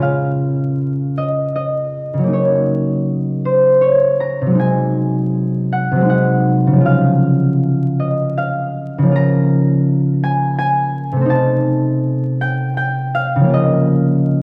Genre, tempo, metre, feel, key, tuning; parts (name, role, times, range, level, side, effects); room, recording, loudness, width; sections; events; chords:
classical, solo harp piece; 80 BPM; 3/4; uneven beats, rubato; Db major; A4 = 440 Hz
concert harp; solo; 0.0-14.4 s; C3 to Bb5; -16 LUFS; equal
moderate scoring stage reverb, RT60 1.7 s; worn, warbling old tape, cassette tape, vinyl crackle, warbly pitch drift; -16 LUFS; mono
0.0-14.4 A section
0.0 Db; 2.3 Ebm7/Db; 4.6 Ab7/C; 6.9 Db; 9.2 Bbm/Db; 11.3 Adim/C; 13.5 Bbm/Db